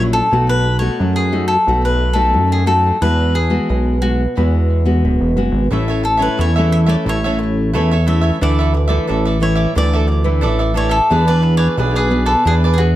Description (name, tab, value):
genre	samba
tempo	89 BPM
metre	4/4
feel	straight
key	unclear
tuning	A4 = 439 Hz
part	cavaquinho	melody	0.0-13.0 s	F#4 to E5	-19 LUFS	left 1 dB	tape echo
part	nylon-string guitar	accompaniment	0.0-13.0 s	A2 to G#4	-19 LUFS	left 1 dB	none
part	fat analog bass	bass	0.0-13.0 s	D1 to F#2	-16 LUFS	equal	none
part	cavaquinho	accompaniment	5.7-12.8 s	D4 to E5	-22 LUFS	right 4 dB	none
room	light reverb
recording	none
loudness	-13 LUFS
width	side -14 dB against mid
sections	0.0-13.0 A section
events	none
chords	0.3 B7; 3.0 Eadd9; 5.7 A; 8.4 Dsus2; 11.1 E7